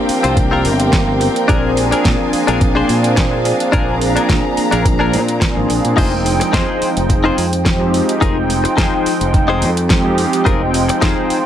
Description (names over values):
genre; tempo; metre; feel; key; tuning
nu-disco, nu disco; 107 BPM; 4/4; swing 54% on 16ths; F dorian; A4 = 440 Hz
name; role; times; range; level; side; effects
warm analog pad; accompaniment; 0.0-11.5 s; F3 to G5; -16 LUFS; equal; lush chorus, cassette tape, digital delay
rich studio string section; sustained chords; 0.0-6.0 s; C4 to Bb5; -22 LUFS; equal; sidechain pumping
fingered electric bass; bass; 0.1-11.3 s; F1 to Bb2; -19 LUFS; equal; tube saturation
pop drum kit; drums; 0.1-11.4 s; crash cymbal, hi-hat, snare drum; -22 LUFS; right 1 dB; small room ambience
direct-recorded clean electric guitar; riff; 0.2-11.4 s; C4 to C5; -20 LUFS; left 4 dB; analog chorus, digital delay
electronic kick drum; drums; 0.4-11.1 s; none; -17 LUFS; equal; overdrive, small room ambience
room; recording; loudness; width
light reverb, digital ambience; none; -12 LUFS; side -10 dB against mid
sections
0.0-6.0 A section; 6.0-11.5 B section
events
filter sweep on analog synth pad 0.0-6.0; drop 6.0-11.5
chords
0.0 C7sus4; 1.5 Bb7; 6.0 Fm7